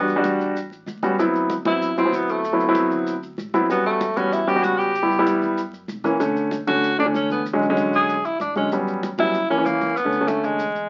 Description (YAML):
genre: Afro-Cuban jazz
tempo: 191 BPM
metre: 4/4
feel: straight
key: A mixolydian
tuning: A4 = 440 Hz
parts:
  - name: clear tenor saxophone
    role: melody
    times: 0.0-10.9 s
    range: G#3 to G#4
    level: -24 LUFS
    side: equal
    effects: none
  - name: warm concert grand piano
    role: accompaniment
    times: 0.0-10.6 s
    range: D3 to F#4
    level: -23 LUFS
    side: equal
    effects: none
  - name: upright bass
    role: bass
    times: 0.0-10.9 s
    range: F#1 to F#2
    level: -44 LUFS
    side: equal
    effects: none
  - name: congas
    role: percussion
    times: 0.1-10.9 s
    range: none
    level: -36 LUFS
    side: equal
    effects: none
  - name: maracas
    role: percussion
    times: 0.1-10.9 s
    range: none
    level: -48 LUFS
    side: equal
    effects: none
room: moderate small room reverb, RT60 0.5 s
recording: very old 78 rpm record, vinyl crackle, nothing above 7.5 kHz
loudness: -21 LUFS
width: mono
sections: 0.0-10.9 A section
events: none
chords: 0.0 Em7; 0.6 A13; 1.2 D13; 3.7 A13; 5.0 C#m7b5; 5.6 F#7; 6.2 Bm7; 7.5 E13; 8.7 A13; 9.3 F#7; 10.0 Bm7